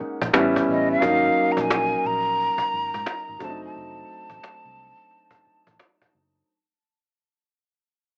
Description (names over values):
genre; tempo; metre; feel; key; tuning
R&B, neo-soul; 88 BPM; 4/4; swing 63% on 16ths; unclear; A4 = 440 Hz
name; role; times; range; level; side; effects
clear concert grand piano; accompaniment; 0.0-6.5 s; Gb3 to E4; -26 LUFS; equal; none
vintage muted fingered electric bass; bass; 0.0-6.4 s; F1 to Ab2; -40 LUFS; equal; none
cajon; drums; 0.0-6.4 s; none; -27 LUFS; equal; none
breathy hollow jazz flute; melody; 0.7-5.8 s; Eb5 to Bb5; -27 LUFS; equal; none
room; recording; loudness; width
moderate studio reverb, RT60 0.6 s; AM radio sound; -22 LUFS; mono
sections
0.0-6.5 A section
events
fade-out 0.0-6.5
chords
0.3 A9; 1.0 Ab9sus4; 3.4 F7b9